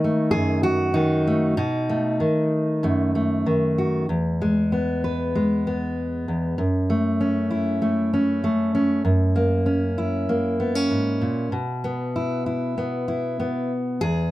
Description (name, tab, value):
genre	folk, solo fingerstyle acoustic guitar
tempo	96 BPM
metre	4/4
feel	straight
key	unclear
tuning	A4 = 442 Hz
part	fingerpicked steel-string acoustic guitar	solo	0.0-14.3 s	E2 to B4	-20 LUFS	equal	none
room	moderate studio ambience, RT60 0.5 s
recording	none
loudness	-20 LUFS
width	side -16 dB against mid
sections	0.0-4.1 A section; 4.1-14.0 B section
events	none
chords	0.0 B7; 4.1 E; 6.6 F#m; 9.0 F#7; 11.5 Bsus4